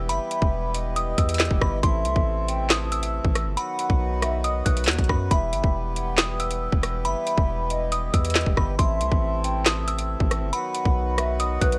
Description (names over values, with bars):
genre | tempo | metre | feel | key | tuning
hip hop, drill | 138 BPM | 4/4 | half-time | E harmonic minor | A4 = 440 Hz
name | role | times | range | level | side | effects
glassy synth bell | melody | 0.0-11.8 s | B5 to F#6 | -32 LUFS | equal | chorus, low-pass filter, analog delay
hand-pumped harmonium | sustained chords | 0.0-11.8 s | C3 to G4 | -34 LUFS | equal | none
long sustained 808-style bass | bass | 0.0-11.8 s | E1 to F#2 | -30 LUFS | equal | none
hollow clarinet-like synth lead | second line | 0.1-11.8 s | B4 to G5 | -33 LUFS | equal | chorus, analog delay
drill drum kit | drums | 0.1-11.8 s | handclaps, hi-hat, kick drum, rim click, snare drum | -24 LUFS | equal | none
room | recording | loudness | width
digital ambience | dry, gritty hardware recording | -24 LUFS | mono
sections
0.0-11.8 A section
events
none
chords
0.0 Em; 1.8 Am; 3.6 B; 5.3 Em; 8.8 Am; 10.5 B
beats
| 0.09 0.53 0.96 1.40 | 1.83 2.27 2.70 3.14 | 3.57 4.01 4.44 4.88 | 5.31 5.75 6.18 6.62 | 7.05 7.48 7.92 8.35 | 8.79 9.22 9.66 10.09 | 10.53 10.96 11.40